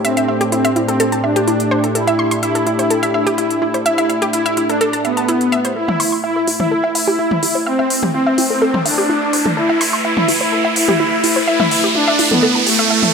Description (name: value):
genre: melodic techno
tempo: 126 BPM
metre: 4/4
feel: straight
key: A minor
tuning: A4 = 443 Hz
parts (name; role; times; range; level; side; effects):
- soft supersaw; melody; 0.0-13.1 s; A3 to E4; -17 LUFS; equal; tape echo
- warm analog pad; sustained chords; 0.0-13.1 s; A3 to B4; -24 LUFS; equal; wide subtle chorus
- analog pluck; arpeggios; 0.0-13.0 s; E4 to C6; -20 LUFS; equal; chorus, tape echo
- overtone-sweeping drone; drone; 0.0-5.8 s; A2; -27 LUFS; left 1 dB; chorus, built-in reverb
- deep house drum kit; drums; 0.0-13.1 s; hi-hat, toms; -20 LUFS; left 1 dB; small room ambience
- riser; sound effects; 7.5-13.1 s; none; -20 LUFS; right 2 dB; none
room: moderate lush hall reverb, RT60 1.9 s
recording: none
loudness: -13 LUFS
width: side -6 dB against mid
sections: 0.0-5.8 A section; 5.8-13.1 B section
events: filter sweep on supersaw synth 0.0-5.8; build-up 5.8-13.1; filter sweep on analog synth pad 5.8-13.1; riser 7.5-13.1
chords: 0.0 A5